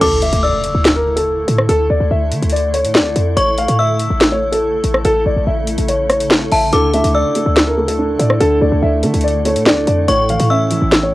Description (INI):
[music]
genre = hip hop, drill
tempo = 143 BPM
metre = 4/4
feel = half-time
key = unclear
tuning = A4 = 440 Hz
[part]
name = dark baby grand piano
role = melody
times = 0.0-11.1 s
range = A4 to F5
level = -17 LUFS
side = left 1 dB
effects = none
[part]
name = metallic FM bell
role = second line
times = 0.0-11.1 s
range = A5 to E6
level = -20 LUFS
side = left 2 dB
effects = chorus, cassette tape, tape echo
[part]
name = felt-muted upright piano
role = accompaniment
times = 0.0, 6.7-11.1 s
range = A2 to D5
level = -18 LUFS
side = right 2 dB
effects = cassette tape
[part]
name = granular cloud pad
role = sustained chords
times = 0.1-11.1 s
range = C#3 to A4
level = -24 LUFS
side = equal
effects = built-in reverb, cassette tape
[part]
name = short 808-style bass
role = bass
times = 0.0-11.1 s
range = A1 to D3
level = -18 LUFS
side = equal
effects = none
[part]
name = drill drum kit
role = drums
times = 0.0-11.0 s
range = crash cymbal, handclaps, hi-hat, rim click, snare drum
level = -16 LUFS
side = equal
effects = cassette tape
[part]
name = impact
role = sound effects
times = 0.0-1.7 s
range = none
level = -27 LUFS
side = equal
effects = none
[sound]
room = light reverb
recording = home recording on cassette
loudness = -12 LUFS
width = side -17 dB against mid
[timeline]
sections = 0.0-11.1 A section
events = impact 0.0-1.7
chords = 0.0 Dsus2; 3.4 A; 6.7 Dsus2; 10.1 A